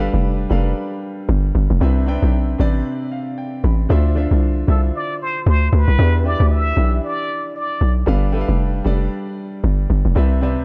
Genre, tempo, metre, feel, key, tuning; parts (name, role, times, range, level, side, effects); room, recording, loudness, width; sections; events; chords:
amapiano; 115 BPM; 4/4; swing 58% on 16ths; A4 = 440 Hz
warm grand piano; accompaniment; 0.0-10.6 s; C3 to B5; -27 LUFS; equal
hollow log drum bass; bass; 0.0-10.6 s; F1 to E2; -18 LUFS; equal
trumpet with plunger mute; melody; 4.7-7.9 s; A4 to E5; -26 LUFS; equal; digital delay
small room ambience; dark, warm production; -18 LUFS; mono
0.0-10.6 A section
grand piano fill 2.9-3.9
0.0 G7; 1.8 Cmaj9; 3.9 Dm7; 6.0 Em7; 8.1 G7